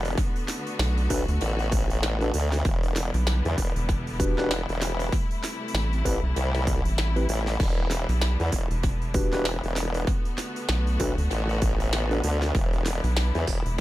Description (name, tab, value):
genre	glitch hop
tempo	97 BPM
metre	4/4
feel	swing 59% on 16ths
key	E minor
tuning	A4 = 440 Hz
part	clear studio string section	sustained chords	0.0-13.8 s	C3 to F#4	-33 LUFS	left 2 dB	sidechain pumping
part	formant-sweep wobble bass	bass	0.0-13.6 s	E1 to E2	-26 LUFS	equal	chorus, overdrive
part	glitchy drum kit	drums	0.0-13.8 s	crash cymbal, hi-hat, snare drum	-32 LUFS	right 1 dB	studio reverb, tape echo
part	electronic kick drum	drums	0.2-13.8 s	none	-27 LUFS	equal	overdrive, studio reverb
part	rubbery square bass	bass	0.8-13.8 s	E1 to D2	-25 LUFS	equal	none
part	mellow tine electric piano	stabs	1.1-12.2 s	C4 to B4	-32 LUFS	left 1 dB	sidechain pumping, tape echo
room	little or no reverb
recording	echo-heavy mix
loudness	-23 LUFS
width	side -16 dB against mid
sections	0.0-13.8 A section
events	none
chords	0.2 Bm7; 2.6 Em7; 5.1 Am7; 7.6 Em7; 10.1 Bm7; 12.5 Em7